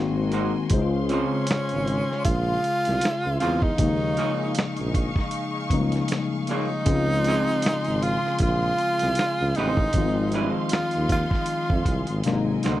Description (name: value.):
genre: R&B, neo-soul.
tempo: 78 BPM.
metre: 4/4.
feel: swing 57% on 16ths.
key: unclear.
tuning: A4 = 440 Hz.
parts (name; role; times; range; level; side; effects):
breathy tenor saxophone; melody; 0.0-12.6 s; Db4 to C5; -26 LUFS; right 1 dB; none.
tine electric piano; accompaniment; 0.0-12.8 s; C3 to C5; -27 LUFS; left 4 dB; none.
warm studio string section; sustained chords; 0.0-12.8 s; Db3 to Db6; -34 LUFS; left 1 dB; none.
mellow tuba; bass; 0.0-12.8 s; Ab1 to F2; -27 LUFS; right 1 dB; none.
vintage hollow-body jazz guitar; second line; 0.3-12.8 s; Ab3 to Db5; -28 LUFS; right 4 dB; none.
dusty soul sampler-style drum kit; drums; 0.3-12.8 s; hi-hat, kick drum, snare drum; -26 LUFS; right 1 dB; none.
room: little or no reverb.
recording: dry, close 1970s-style studio recording.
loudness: -21 LUFS.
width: side -14 dB against mid.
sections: 0.0-12.8 A section.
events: drum fill 12.2-12.8.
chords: 0.0 Ab9; 0.7 Dbmaj7; 3.8 Eb9sus4; 6.9 Dbmaj7; 9.9 Ab6; 12.2 Ab9.